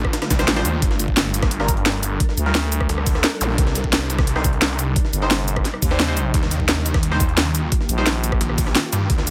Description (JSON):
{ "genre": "dark technical drum and bass", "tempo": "174 BPM", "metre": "4/4", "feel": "straight", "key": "unclear", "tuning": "A4 = 440 Hz", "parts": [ { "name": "swarming drone", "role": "sustained chords", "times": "0.0-9.3 s", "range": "C3 to Bb4", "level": "-32 LUFS", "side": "equal", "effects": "built-in reverb, sidechain pumping" }, { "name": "snarling distorted saw bass", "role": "bass", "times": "0.0-9.3 s", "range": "G1 to G2", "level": "-25 LUFS", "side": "equal", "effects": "tube saturation, sidechain pumping" }, { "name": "drum and bass drum kit", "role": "drums", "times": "0.0-9.3 s", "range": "cabasa, hi-hat, rim click, snare drum", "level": "-24 LUFS", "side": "equal", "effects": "overdrive" }, { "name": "electronic kick drum", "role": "drums", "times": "0.0-9.2 s", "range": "none", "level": "-23 LUFS", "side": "equal", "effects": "overdrive" }, { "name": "breakbeat sampler-style drum kit", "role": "drums", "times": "0.1-9.3 s", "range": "hi-hat, snare drum", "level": "-32 LUFS", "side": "equal", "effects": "none" }, { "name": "swell and zap", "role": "sound effects", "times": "0.3-0.8, 3.4-3.5 s", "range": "none", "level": "-33 LUFS", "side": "equal", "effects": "none" }, { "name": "band-passed chord stab", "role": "stabs", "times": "0.4-8.1 s", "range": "F3 to C5", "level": "-30 LUFS", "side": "equal", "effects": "phaser, subtle chorus, delay" }, { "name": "growling FM bass", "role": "bass", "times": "2.4-2.9, 5.1-8.4 s", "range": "G1 to Eb2", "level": "-24 LUFS", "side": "equal", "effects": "none" } ], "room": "little or no reverb", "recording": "none", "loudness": "-20 LUFS", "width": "mono", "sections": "0.0-9.3 A section", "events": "swell 0.3-0.8", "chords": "0.0 Dm7; 0.8 Gm; 3.6 Cm; 6.3 Eb" }